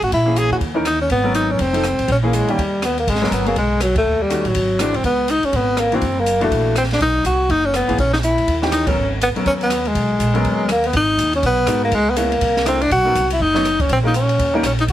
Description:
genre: jazz, small-group swing and bop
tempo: 244 BPM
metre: 4/4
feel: swing 60% on 8ths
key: G# minor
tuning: A4 = 442 Hz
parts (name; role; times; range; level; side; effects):
- breathy tenor saxophone; melody; 0.0-14.9 s; F#3 to G#4; -17 LUFS; left 1 dB; none
- upright bass; bass; 0.0-14.9 s; F1 to G#2; -22 LUFS; right 1 dB; none
- open jazz drum kit; drums; 0.0-14.9 s; hi-hat, kick drum, ride cymbal, rim click, snare drum; -25 LUFS; equal; none
- bright upright piano; accompaniment; 0.3-14.6 s; A#2 to C#5; -22 LUFS; left 1 dB; none
room: light reverb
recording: heavily compressed radio sound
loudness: -15 LUFS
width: side -12 dB against mid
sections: 0.0-3.1 A section; 3.1-10.9 A section; 10.9-14.9 B section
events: band accent 3.9, 8.8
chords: 0.1 A#m7b5; 0.6 D#5; 1.1 G#m11; 1.6 F7; 2.1 A#m7b5; 2.6 D#; 3.1 G#m11; 4.0 D#m7b5; 4.5 G#aug7; 5.0 C#7(no3); 6.0 F#7alt; 7.0 B; 8.0 A#dim; 8.5 D#7b9; 9.0 G#m11; 10.9 G#m9; 11.9 C#m7; 12.4 C13; 12.9 Badd9; 13.9 A#m7; 14.4 D#7

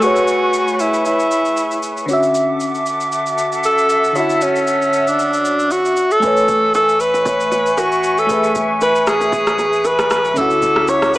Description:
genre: amapiano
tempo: 116 BPM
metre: 4/4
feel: swing 55% on 16ths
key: A major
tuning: A4 = 439 Hz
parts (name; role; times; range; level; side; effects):
- clear alto saxophone; melody; 0.0-11.2 s; C#4 to C#5; -15 LUFS; equal; tape echo
- FM electric piano with soft pad layer; accompaniment; 0.0-11.2 s; D3 to G#5; -20 LUFS; equal; chorus, phaser
- small flute group; sustained chords; 0.0-11.2 s; C#4 to E6; -21 LUFS; left 1 dB; none
- electronic shaker and rim click; drums; 0.0-11.2 s; none; -26 LUFS; equal; overdrive
- downlifter; sound effects; 0.0-2.1 s; none; -38 LUFS; right 1 dB; none
- punchy sub bass; bass; 6.2-11.2 s; A1 to D2; -37 LUFS; equal; none
- congas and bongos; percussion; 6.2-11.0 s; none; -26 LUFS; right 1 dB; none
room: light reverb, digital ambience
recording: small speaker sound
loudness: -13 LUFS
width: side -17 dB against mid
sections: 0.0-11.2 A section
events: none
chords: 0.0 Amaj9; 2.1 Dmaj9; 6.2 Amaj9; 10.4 Dmaj9

